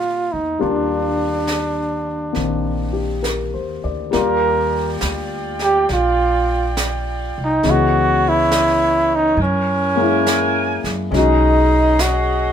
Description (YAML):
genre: jazz ballad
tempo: 68 BPM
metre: 4/4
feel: swing 68% on 8ths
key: Eb major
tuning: A4 = 444 Hz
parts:
  - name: breathy trumpet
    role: melody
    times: 0.0-12.5 s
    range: Db4 to Bb4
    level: -18 LUFS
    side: right 1 dB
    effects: none
  - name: warm grand piano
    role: accompaniment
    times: 0.0-12.5 s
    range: Eb3 to Eb5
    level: -22 LUFS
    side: left 5 dB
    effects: none
  - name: upright bass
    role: bass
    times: 0.0-12.5 s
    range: Bb1 to Bb2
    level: -23 LUFS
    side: equal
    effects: none
  - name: jazz brush drum kit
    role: drums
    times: 0.6-12.5 s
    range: brushed snare drum, hi-hat, snare drum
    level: -28 LUFS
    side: right 2 dB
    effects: none
  - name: mellow saxophone section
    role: sustained chords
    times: 4.1-12.5 s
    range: Db4 to Ab5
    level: -24 LUFS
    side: right 2 dB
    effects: none
room: light reverb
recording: minimal, uncompressed stereo recording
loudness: -15 LUFS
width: side -8 dB against mid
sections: 0.0-4.1 A section; 4.1-12.5 A section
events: none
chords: 0.0 Ebmaj9; 7.6 Dbm7; 9.4 Gb9; 11.1 B69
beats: | 0.59 1.46 2.34 3.23 | 4.12 5.01 5.88 6.76 | 7.64 8.52 9.39 10.27 | 11.14 12.00